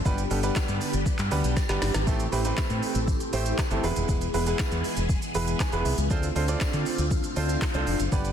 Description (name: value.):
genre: dance-pop.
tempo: 119 BPM.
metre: 4/4.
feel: straight.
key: unclear.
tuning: A4 = 440 Hz.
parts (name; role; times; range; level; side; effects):
phased string machine; sustained chords; 0.0-8.3 s; D3 to G#4; -32 LUFS; left 1 dB; ensemble chorus, phaser, sidechain pumping.
fingered electric bass; bass; 0.0-8.3 s; D#1 to D3; -28 LUFS; left 1 dB; sidechain pumping.
bright baby grand piano; accompaniment; 0.1-8.3 s; G3 to B5; -31 LUFS; right 5 dB; sidechain pumping.
smooth R&B drum kit; drums; 0.1-8.3 s; handclaps, hi-hat, kick drum, shaker, snare drum; -28 LUFS; equal; none.
tambourine; percussion; 0.1-8.2 s; none; -48 LUFS; left 4 dB; none.
room: little or no reverb.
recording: dense, heavily limited modern master.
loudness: -24 LUFS.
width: side -9 dB against mid.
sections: 0.0-8.3 A section.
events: drum fill 1.6-2.1; grand piano fill 5.1-6.1.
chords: 0.1 G; 2.1 Am7; 3.8 E; 6.1 Dm7.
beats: | 0.05 0.56 1.06 1.57 | 2.07 2.58 3.08 3.58 | 4.09 4.59 5.10 5.60 | 6.11 6.61 7.11 7.62 | 8.12.